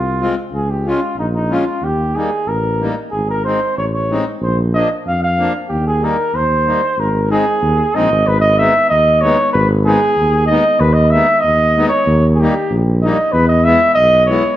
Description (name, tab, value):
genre	alpine folk, alpine dance band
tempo	94 BPM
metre	2/4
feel	straight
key	Ab major, G# minor from 8.3 s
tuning	A4 = 442 Hz
part	warm flugelhorn	melody	0.0-14.6 s	Eb4 to F5	-15 LUFS	right 1 dB	none
part	mellow tuba	bass	0.0-14.4 s	Ab1 to F2	-17 LUFS	equal	none
part	accordion	accompaniment	0.2-14.4 s	F3 to F4	-21 LUFS	left 2 dB	none
room	moderate recital hall reverb, RT60 1.3 s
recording	dark, warm production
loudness	-12 LUFS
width	side -13 dB against mid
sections	0.0-8.3 A section; 8.3-14.6 B section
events	none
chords	0.0 Fm; 0.5 Db; 1.8 Eb; 3.1 Ab; 4.4 Bb; 5.7 Eb; 7.0 Abadd9; 8.3 G#m; 10.8 G#m/D#; 12.1 D#; 13.3 E